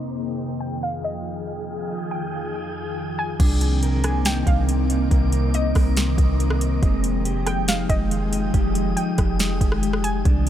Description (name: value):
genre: hip hop, atmospheric cloud-rap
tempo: 140 BPM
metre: 4/4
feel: half-time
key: unclear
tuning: A4 = 443 Hz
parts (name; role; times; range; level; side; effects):
- glassy FM pad; sustained chords; 0.0-10.5 s; F2 to G5; -26 LUFS; left 1 dB; ensemble chorus, built-in reverb
- wind-like tuned noise texture; texture; 0.0-10.5 s; Eb4 to Eb6; -36 LUFS; right 1 dB; built-in reverb
- warbly dusty pluck; melody; 0.6-10.2 s; Eb5 to Ab5; -31 LUFS; right 1 dB; chorus, phaser, low-pass filter, tape echo
- mellow electric guitar; arpeggios; 3.4-10.5 s; Ab3 to Bb4; -31 LUFS; left 2 dB; low-pass filter, tape echo
- soft 808-style bass; bass; 3.4-10.5 s; F1 to C2; -22 LUFS; equal; none
- smooth R&B drum kit; drums; 3.4-10.5 s; crash cymbal, hi-hat, kick drum, rim click, snare drum; -22 LUFS; equal; overdrive
room: digital ambience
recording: low-pass filter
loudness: -20 LUFS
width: side -11 dB against mid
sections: 0.0-3.4 A section; 3.4-10.5 B section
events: filter sweep 0.0-3.4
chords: 0.0 Fm9; 3.4 Cm9; 6.8 Fm9